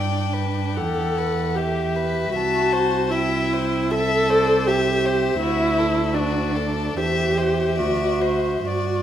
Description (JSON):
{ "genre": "classical, slow romantic movement for string quartet", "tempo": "66-83 BPM", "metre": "4/4", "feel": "rubato", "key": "unclear", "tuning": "A4 = 440 Hz", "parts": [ { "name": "dark violin", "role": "melody", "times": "0.0-9.0 s", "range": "C5 to A5", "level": "-27 LUFS", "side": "left 8 dB", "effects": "none" }, { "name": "rich violin", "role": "second line", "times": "0.0-9.0 s", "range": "F#4 to E5", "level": "-27 LUFS", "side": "left 5 dB", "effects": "none" }, { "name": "dark viola", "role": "accompaniment", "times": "0.0-9.0 s", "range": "D4 to A4", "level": "-22 LUFS", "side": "right 1 dB", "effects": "none" }, { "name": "dark cello", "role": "bass", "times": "0.0-9.0 s", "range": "C2 to G2", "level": "-25 LUFS", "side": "right 4 dB", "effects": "none" } ], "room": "wet recital hall reverb, RT60 1.8 s", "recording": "none", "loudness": "-19 LUFS", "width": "side -10 dB against mid", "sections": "0.0-9.0 A section", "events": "none", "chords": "0.0 G; 0.8 Em; 2.3 C; 5.4 D; 7.0 C/E; 7.8 D7" }